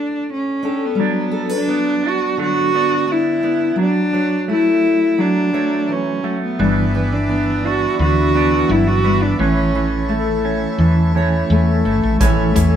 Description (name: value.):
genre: acoustic folk-pop ballad.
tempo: 86 BPM.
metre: 4/4.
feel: straight.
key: unclear.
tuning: A4 = 440 Hz.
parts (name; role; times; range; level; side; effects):
warm cello; melody; 0.0-10.1 s; B3 to F#4; -18 LUFS; equal; none.
fingerpicked steel-string acoustic guitar; accompaniment; 0.0-12.8 s; A2 to C#5; -22 LUFS; left 4 dB; none.
clean electric guitar; arpeggios; 1.0-12.8 s; E3 to D4; -21 LUFS; right 5 dB; harmonic tremolo.
hand-pumped harmonium; sustained chords; 6.6-12.8 s; E4 to A5; -28 LUFS; right 1 dB; none.
woody fretless electric bass; bass; 6.6-12.8 s; G1 to E2; -18 LUFS; equal; none.
natural country drum kit; drums; 12.2-12.7 s; hi-hat, kick drum; -19 LUFS; equal; none.
room: moderate studio reverb, RT60 0.6 s.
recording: band playing live in one room.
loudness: -15 LUFS.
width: side -9 dB against mid.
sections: 1.0-12.2 A section.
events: none.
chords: 0.0 A7sus4; 1.0 Gmaj7; 3.8 Dmaj7/F#; 6.6 G6; 9.4 A.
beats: 0.29 | 0.99 1.69 2.39 3.09 | 3.79 4.49 5.19 5.89 | 6.59 7.29 7.99 8.69 | 9.39 10.09 10.79 11.50 | 12.20.